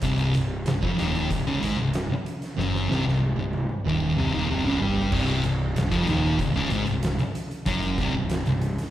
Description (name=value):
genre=stoner and doom metal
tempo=94 BPM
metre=4/4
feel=straight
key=C minor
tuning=A4 = 440 Hz
part: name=thick fuzz guitar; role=riff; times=0.0-8.7 s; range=C2 to Ab3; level=-26 LUFS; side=left 3 dB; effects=distortion
part: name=thick fuzz guitar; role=riff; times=0.0-8.7 s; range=C2 to Ab3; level=-30 LUFS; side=right 8 dB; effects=distortion, slapback echo
part: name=fuzz picked electric bass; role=bass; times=0.0-8.8 s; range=C1 to Ab1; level=-28 LUFS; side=equal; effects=overdrive
part: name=oversized low-tuned drum kit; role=drums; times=0.0-8.9 s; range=crash cymbal, hi-hat, kick drum, snare drum, toms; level=-30 LUFS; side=equal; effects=none
room=small room ambience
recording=live gig heard through the venue's PA, recital hall reverb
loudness=-22 LUFS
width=side -13 dB against mid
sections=0.0-5.1 A section; 5.1-8.9 A section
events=drum fill 2.6-5.1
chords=0.0 Cm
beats=| 0.03 0.66 1.30 1.94 | 2.57 3.21 3.85 4.48 | 5.12 5.75 6.39 7.03 | 7.67 8.30